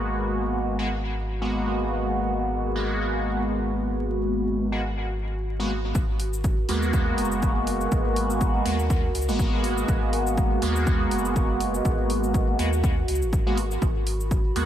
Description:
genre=dub techno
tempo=122 BPM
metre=4/4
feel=swing 56% on 16ths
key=G# minor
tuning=A4 = 440 Hz
part: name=warbly tape-like pad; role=sustained chords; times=0.1-14.7 s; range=F#4 to B5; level=-34 LUFS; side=right 3 dB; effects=chorus, built-in reverb, sidechain pumping
part: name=resonant sweep polysynth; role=stabs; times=0.0-14.7 s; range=G#3 to F#4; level=-26 LUFS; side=equal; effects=chorus, phaser, sidechain pumping, dub echo
part: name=pure sine sub bass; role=bass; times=0.0-14.7 s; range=F#1 to D#2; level=-29 LUFS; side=equal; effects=sidechain pumping
part: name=electronic cabasa and hi-hat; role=drums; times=6.0-14.7 s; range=none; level=-37 LUFS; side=left 1 dB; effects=overdrive, studio reverb
part: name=electronic kick drum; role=drums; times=6.0-14.4 s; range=none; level=-24 LUFS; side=equal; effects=studio reverb
room=light reverb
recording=vinyl crackle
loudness=-22 LUFS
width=side -10 dB against mid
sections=0.0-6.0 A section; 6.0-14.7 B section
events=filter sweep on ambient pad 0.0-6.0; filter sweep on analog polysynth 6.0-14.7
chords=0.0 G#m9

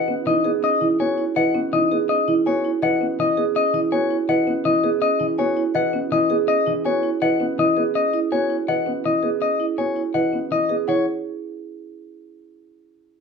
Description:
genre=classical, minimalist pattern music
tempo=164 BPM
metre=4/4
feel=straight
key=C# minor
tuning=A4 = 440 Hz
part: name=clean electric guitar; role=melody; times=0.0-11.1 s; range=C#5 to F#5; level=-22 LUFS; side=left 5 dB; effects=none
part: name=dark grand piano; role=accompaniment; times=0.0-11.1 s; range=E3 to B3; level=-24 LUFS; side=left 2 dB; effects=none
part: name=marimba with soft mallets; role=arpeggios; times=0.0-11.0 s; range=C#4 to B4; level=-23 LUFS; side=right 7 dB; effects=none
part: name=small celesta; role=arpeggios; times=0.0-11.0 s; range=D#5 to G#5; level=-29 LUFS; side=left 4 dB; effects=none
room=moderate large studio reverb, RT60 0.9 s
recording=minimal, uncompressed stereo recording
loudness=-18 LUFS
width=side -5 dB against mid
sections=0.0-10.9 A section; 10.9-12.3 B section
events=none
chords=0.0 C#m9; 10.9 N.C.

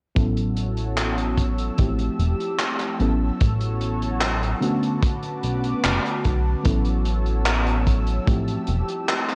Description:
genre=vaporwave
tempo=74 BPM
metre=4/4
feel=straight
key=A major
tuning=A4 = 438 Hz
part: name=mellow FM electric piano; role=accompaniment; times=0.1-9.3 s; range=D3 to A4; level=-29 LUFS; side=equal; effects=lush chorus, cassette tape, tape echo
part: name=lush unison pad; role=sustained chords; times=0.5-9.3 s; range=F#4 to E6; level=-34 LUFS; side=equal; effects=chorus, phaser, vintage 12-bit sampler grit
part: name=chorused synth bass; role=bass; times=0.2-8.8 s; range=E1 to B1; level=-26 LUFS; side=equal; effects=none
part: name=crunchy breakbeat drum kit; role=drums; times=0.2-9.3 s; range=handclaps, hi-hat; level=-29 LUFS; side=equal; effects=gated reverb
part: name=kick drum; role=drums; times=0.2-8.4 s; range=none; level=-24 LUFS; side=equal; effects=none
room=little or no reverb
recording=cassette tape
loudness=-23 LUFS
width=mono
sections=0.2-9.3 A section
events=none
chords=0.2 A6; 1.8 Fmaj9; 3.0 A6; 4.6 Bm7; 6.7 A6; 8.3 Fmaj9

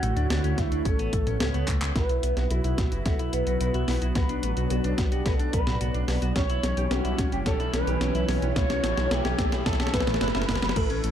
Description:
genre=synthwave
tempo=109 BPM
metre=4/4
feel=straight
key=unclear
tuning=A4 = 442 Hz
part: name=expressive synth lead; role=melody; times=0.0-11.1 s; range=E4 to C#5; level=-31 LUFS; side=equal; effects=wide subtle chorus, digital delay
part: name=lush unison pad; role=sustained chords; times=0.0-11.1 s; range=D3 to F#5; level=-33 LUFS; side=right 2 dB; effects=chorus, phaser, sidechain pumping
part: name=clean electric guitar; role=arpeggios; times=0.0-11.1 s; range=A3 to E5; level=-36 LUFS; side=left 5 dB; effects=low-pass filter, ping-pong delay
part: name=dark detuned saw bass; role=bass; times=0.0-11.1 s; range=F#1 to D2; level=-28 LUFS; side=equal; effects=sidechain pumping
part: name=clean 12-bit digital drum machine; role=drums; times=0.0-11.1 s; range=crash cymbal, handclaps, hi-hat, snare drum, toms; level=-31 LUFS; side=equal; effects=none
part: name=electronic kick drum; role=drums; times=0.6-10.9 s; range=none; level=-28 LUFS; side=equal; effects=overdrive
part: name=mellow electric guitar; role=riff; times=2.0-11.1 s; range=A3 to E5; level=-38 LUFS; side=left 4 dB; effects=ensemble chorus, low-pass filter, ping-pong delay
part: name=riser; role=sound effects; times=5.1-10.8 s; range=none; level=-39 LUFS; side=right 2 dB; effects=none
part: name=FM electric piano with soft pad layer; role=second line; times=10.8-11.1 s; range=A4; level=-36 LUFS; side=right 3 dB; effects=none
room=moderate digital room reverb, RT60 1.0 s, digital ambience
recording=dark, warm production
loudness=-23 LUFS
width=side -10 dB against mid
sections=0.0-2.0 A section; 2.0-10.8 B section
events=drum fill 1.7, 2.0-10.8; band accent 1.8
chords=0.0 Dmaj7; 0.9 Aadd9; 2.0 Esus2; 4.2 Bm; 6.4 C#dim; 8.6 A

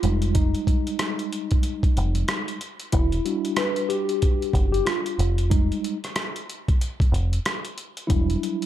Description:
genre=hip hop, jazz-hop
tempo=93 BPM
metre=4/4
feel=swing 60% on 16ths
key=unclear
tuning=A4 = 440 Hz
part: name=mellow tine electric piano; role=accompaniment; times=0.0-8.7 s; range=F#3 to B4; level=-26 LUFS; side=left 1 dB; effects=medium stereo tremolo
part: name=deep dub picked electric bass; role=bass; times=0.0-8.3 s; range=E1 to F#1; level=-23 LUFS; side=equal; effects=none
part: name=boom bap sampler-style drum kit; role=drums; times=0.0-8.7 s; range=hi-hat, kick drum, rim click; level=-24 LUFS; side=equal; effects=none
room=digital ambience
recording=dark, warm production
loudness=-21 LUFS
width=side -12 dB against mid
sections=0.0-8.7 A section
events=tine electric piano solo 0.0-8.7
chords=0.0 Fm9; 2.9 Em9; 5.2 Fm9; 8.1 Em9

